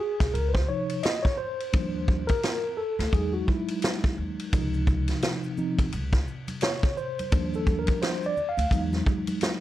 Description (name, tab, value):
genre	hip hop, jazz-hop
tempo	86 BPM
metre	4/4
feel	swing 59% on 16ths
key	Db major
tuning	A4 = 440 Hz
part	mellow tine electric piano	accompaniment	0.0-9.6 s	C3 to F5	-29 LUFS	equal	medium stereo tremolo
part	upright bass	bass	0.2-9.0 s	C2 to E2	-30 LUFS	equal	none
part	vintage drum kit	drums	0.2-9.6 s	hi-hat, kick drum, ride cymbal, snare drum	-27 LUFS	equal	none
part	maracas and congas	percussion	4.5-9.6 s	none	-42 LUFS	equal	none
room	light reverb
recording	none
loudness	-24 LUFS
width	side -14 dB against mid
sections	0.0-9.6 A section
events	tine electric piano solo 0.0-9.6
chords	0.0 Dbmaj9; 1.7 Ebmaj9; 3.1 Emaj9; 4.5 Dbmaj9; 7.3 Ebmaj9; 8.7 Emaj9